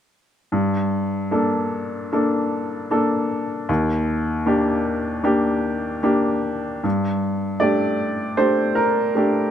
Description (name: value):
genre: neoclassical minimalist piano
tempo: 77 BPM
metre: 4/4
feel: rubato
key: G minor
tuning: A4 = 440 Hz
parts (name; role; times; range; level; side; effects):
- clear upright piano; solo; 0.5-9.5 s; Eb2 to D5; -19 LUFS; equal; none
room: light reverb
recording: close, detailed microphones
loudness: -19 LUFS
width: side -9 dB against mid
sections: 0.5-6.8 A section; 6.8-9.5 B section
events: none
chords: 0.5 Gmadd9; 3.7 Ebmaj7; 6.8 Gmadd9